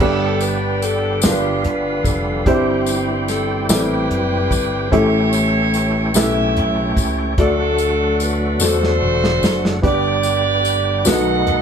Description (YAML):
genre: slow gospel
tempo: 49 BPM (dotted quarters)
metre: 6/8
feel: straight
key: G major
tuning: A4 = 437 Hz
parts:
  - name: clear saxophone section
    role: melody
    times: 0.0-11.6 s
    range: B3 to F#5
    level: -21 LUFS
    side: equal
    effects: none
  - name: warm concert grand piano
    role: accompaniment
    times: 0.0-11.6 s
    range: G2 to D5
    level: -20 LUFS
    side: left 1 dB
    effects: none
  - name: overdriven tonewheel organ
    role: sustained chords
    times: 0.0-11.6 s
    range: D3 to G4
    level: -24 LUFS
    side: right 2 dB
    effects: slow rotary speaker, chorus vibrato
  - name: slap bass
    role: bass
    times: 0.0-11.6 s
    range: E1 to E2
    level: -22 LUFS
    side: equal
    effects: none
  - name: warm soul drum kit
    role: drums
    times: 0.0-11.6 s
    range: crash cymbal, hi-hat, kick drum, snare drum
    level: -20 LUFS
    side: equal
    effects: none
  - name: tambourine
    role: percussion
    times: 0.4-11.4 s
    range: none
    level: -25 LUFS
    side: left 7 dB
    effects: none
room: moderate studio reverb, RT60 0.6 s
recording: band playing live in one room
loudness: -15 LUFS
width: side -7 dB against mid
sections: 0.0-11.6 A section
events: drum fill 8.6-9.8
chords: 0.0 G; 1.2 G7; 2.5 C/G; 4.9 A7; 7.4 D; 9.8 G; 11.1 B7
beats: 1.23 | 2.46 3.69 | 4.92 6.15 | 7.38 8.61 | 9.83 11.06